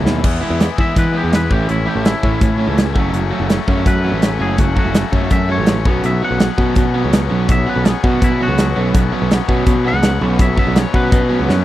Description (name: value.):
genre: indie rock.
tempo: 165 BPM.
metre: 4/4.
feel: straight.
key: unclear.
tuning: A4 = 439 Hz.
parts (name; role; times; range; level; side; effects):
combo organ; sustained chords; 0.0-11.6 s; A4 to E6; -32 LUFS; right 2 dB; none.
biting overdriven guitar; riff; 0.0-11.6 s; F#2 to E4; -23 LUFS; left 10 dB; none.
crunchy overdriven guitar; riff; 0.0-11.5 s; B2 to F#4; -21 LUFS; right 7 dB; lush chorus.
modern bright picked electric bass; bass; 0.0-11.6 s; F#1 to E3; -18 LUFS; equal; none.
big rock drum kit; drums; 0.1-11.6 s; crash cymbal, hi-hat, kick drum, snare drum; -16 LUFS; equal; none.
twangy electric guitar; melody; 0.8-11.6 s; E4 to F#5; -24 LUFS; left 2 dB; none.
room: little or no reverb.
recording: dry, close 1970s-style studio recording.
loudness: -13 LUFS.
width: side -14 dB against mid.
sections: 0.2-11.6 A section.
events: drum fill 0.0, 11.5; clean electric guitar solo 0.2-11.6.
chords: 0.2 E; 1.5 A; 3.0 F#m7; 5.9 Bsus2.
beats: | 0.24 0.60 0.96 1.32 | 1.69 2.05 2.41 2.77 | 3.14 3.50 3.86 4.22 | 4.59 4.95 5.31 5.68 | 6.04 6.40 6.76 7.13 | 7.49 7.86 8.22 8.58 | 8.95 9.31 9.67 10.04 | 10.40 10.77 11.13 11.49.